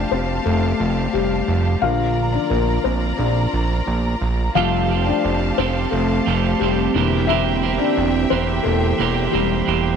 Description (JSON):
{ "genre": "pop", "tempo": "88 BPM", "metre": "4/4", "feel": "straight", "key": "unclear", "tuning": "A4 = 440 Hz", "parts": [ { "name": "felt-muted upright piano", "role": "accompaniment", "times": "0.0-10.0 s", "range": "D3 to F5", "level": "-21 LUFS", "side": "left 8 dB", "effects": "none" }, { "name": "rich symphonic string section", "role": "sustained chords", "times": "0.0-10.0 s", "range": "F4 to Bb5", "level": "-26 LUFS", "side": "right 1 dB", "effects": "none" }, { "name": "fat analog bass", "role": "bass", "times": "0.0-10.0 s", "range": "E1 to Bb1", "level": "-21 LUFS", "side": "right 2 dB", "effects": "none" }, { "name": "twelve-string electric guitar", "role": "riff", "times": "4.6-10.0 s", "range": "F2 to G4", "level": "-22 LUFS", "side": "right 14 dB", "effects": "none" } ], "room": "moderate spring reverb, RT60 2.0 s, studio reverb", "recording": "1960s-style stereo with parts hard left and right", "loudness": "-17 LUFS", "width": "side -7 dB against mid", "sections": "0.0-10.0 A section", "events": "felt piano solo 0.0-10.0", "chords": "0.0 Fadd9; 1.8 Bb; 4.6 Fadd9; 7.0 C7/E", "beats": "0.46 1.14 | 1.83 2.51 3.19 3.88 | 4.56 5.24 5.93 6.61 | 7.29 7.97 8.66 9.34" }